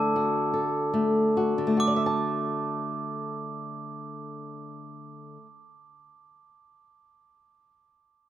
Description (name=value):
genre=children's music, lullaby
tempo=65 BPM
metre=3/4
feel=straight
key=D major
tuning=A4 = 440 Hz
part: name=glockenspiel with brass mallets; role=melody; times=0.0-5.6 s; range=A5 to D6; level=-31 LUFS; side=right 2 dB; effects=none
part: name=flamenco guitar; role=accompaniment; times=0.0-5.8 s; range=D3 to A5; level=-27 LUFS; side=left 1 dB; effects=none
room=light reverb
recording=close, detailed microphones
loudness=-24 LUFS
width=side -12 dB against mid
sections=0.0-1.8 A section; 1.8-7.3 B section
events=slowing down 0.0-1.8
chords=0.0 D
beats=0.14 0.92 | 1.81 2.74 3.67 | 4.58 5.50